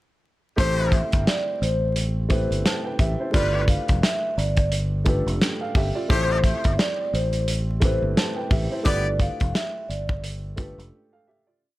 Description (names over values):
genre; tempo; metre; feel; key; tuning
hip hop, boom-bap hip-hop; 87 BPM; 4/4; swing 57% on 16ths; A minor; A4 = 440 Hz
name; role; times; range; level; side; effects
vibraphone with soft mallets; melody; 0.6-10.8 s; B4 to F5; -28 LUFS; equal; digital delay
dark upright piano; accompaniment; 0.6-11.8 s; A3 to A5; -30 LUFS; right 1 dB; none
brilliant trumpet section; stabs; 0.6-9.1 s; G3 to D5; -29 LUFS; left 3 dB; digital delay
fingered electric bass; bass; 0.6-10.9 s; F1 to A1; -25 LUFS; equal; none
warm soul drum kit; drums; 0.6-10.9 s; hi-hat, kick drum, snare drum; -22 LUFS; equal; none
room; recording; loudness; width
small room ambience; vinyl crackle; -20 LUFS; side -17 dB against mid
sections
0.6-11.6 hook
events
fade-out 8.9-11.6; break 10.9-11.6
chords
0.6 Am7; 3.3 G7; 6.1 Am7; 8.9 G7